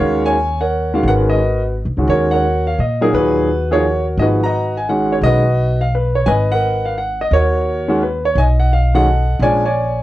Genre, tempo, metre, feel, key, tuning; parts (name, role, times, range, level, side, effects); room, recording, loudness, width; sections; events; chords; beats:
jazz piano trio; 172 BPM; 3/4; swing 64% on 8ths; Eb minor; A4 = 441 Hz
clear concert grand piano; melody; 0.0-10.0 s; Bb2 to Bb5; -15 LUFS; equal
upright bass; bass; 0.0-10.0 s; Ab1 to Bb2; -18 LUFS; equal
light reverb; worn, warbling old tape, cassette tape, warbly pitch drift; -13 LUFS; side -15 dB against mid
0.0-10.0 A section
0.0 Ebm7; 1.1 Abm9; 2.1 Ebm7; 4.2 Abm9; 7.3 Ebm7; 8.4 B7; 9.4 Bb7#9
| 0.02 0.36 0.71 | 1.06 1.41 1.75 | 2.10 2.45 2.80 | 3.14 3.49 3.84 | 4.19 4.53 4.88 | 5.23 5.58 5.92 | 6.27 6.62 6.97 | 7.32 7.66 8.01 | 8.36 8.71 9.06 | 9.40 9.75